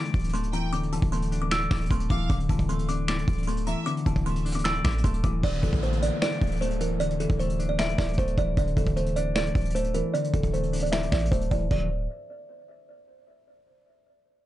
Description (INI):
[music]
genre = hip hop, trap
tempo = 153 BPM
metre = 4/4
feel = half-time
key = unclear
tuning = A4 = 440 Hz
[part]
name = kalimba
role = melody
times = 0.0-11.9 s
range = A4 to E6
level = -31 LUFS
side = right 3 dB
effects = low-pass filter, tape echo
[part]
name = semi-hollow electric guitar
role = accompaniment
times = 0.0-11.9 s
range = D3 to D5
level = -30 LUFS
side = left 4 dB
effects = wide subtle chorus, low-pass filter
[part]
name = vintage brush drum kit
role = drums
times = 0.0-11.8 s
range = crash cymbal, finger snaps, hi-hat, kick drum, snare drum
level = -29 LUFS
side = equal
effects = none
[part]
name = hard-hitting 808-style bass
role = bass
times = 0.1-12.1 s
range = D1 to A1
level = -28 LUFS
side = equal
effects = none
[part]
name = clear studio violin section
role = second line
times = 0.5-3.9 s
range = E5 to G5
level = -40 LUFS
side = right 2 dB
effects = tape echo
[part]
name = downlifter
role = sound effects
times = 5.4-8.6 s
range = none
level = -38 LUFS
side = left 3 dB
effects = none
[sound]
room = studio reverb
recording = dark, warm production, nothing above 10.8 kHz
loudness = -24 LUFS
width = side -14 dB against mid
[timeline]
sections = 0.0-5.4 A section; 5.4-11.7 B section; 11.7-13.3 C section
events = filter sweep 5.4-11.7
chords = 0.0 Dsus2; 11.7 N.C.